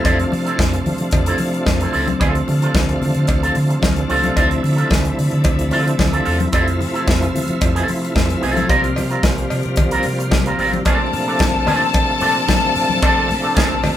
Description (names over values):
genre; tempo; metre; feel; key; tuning
disco; 111 BPM; 4/4; straight; unclear; A4 = 440 Hz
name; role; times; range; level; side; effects
electric guitar with an envelope filter; accompaniment; 0.0-13.9 s; C4 to Bb4; -21 LUFS; right 2 dB; none
bright tonewheel organ; sustained chords; 0.0-14.0 s; C3 to F4; -21 LUFS; equal; chorus vibrato, slow rotary speaker
modern studio drum kit; drums; 0.0-14.0 s; hi-hat, kick drum, snare drum; -20 LUFS; equal; none
overdriven fingered electric bass; bass; 0.1-14.0 s; A1 to F3; -22 LUFS; equal; none
cowbell; percussion; 0.1-14.0 s; none; -27 LUFS; equal; none
congas; percussion; 0.3-14.0 s; none; -27 LUFS; left 4 dB; none
clear studio string section; second line; 10.9-14.0 s; A4 to A5; -19 LUFS; left 5 dB; none
room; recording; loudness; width
wet studio reverb, RT60 0.6 s; band playing live in one room; -15 LUFS; side -12 dB against mid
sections
0.0-10.9 A section; 10.9-14.0 B section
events
none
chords
0.0 Dm7; 6.5 Fmaj7; 8.7 C7sus4; 10.9 Bbmaj9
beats
| 0.05 0.59 1.12 1.67 | 2.20 2.74 3.28 3.82 | 4.37 4.91 5.45 5.99 | 6.53 7.07 7.61 8.15 | 8.70 9.24 9.78 10.32 | 10.86 11.40 11.94 12.48 | 13.03 13.56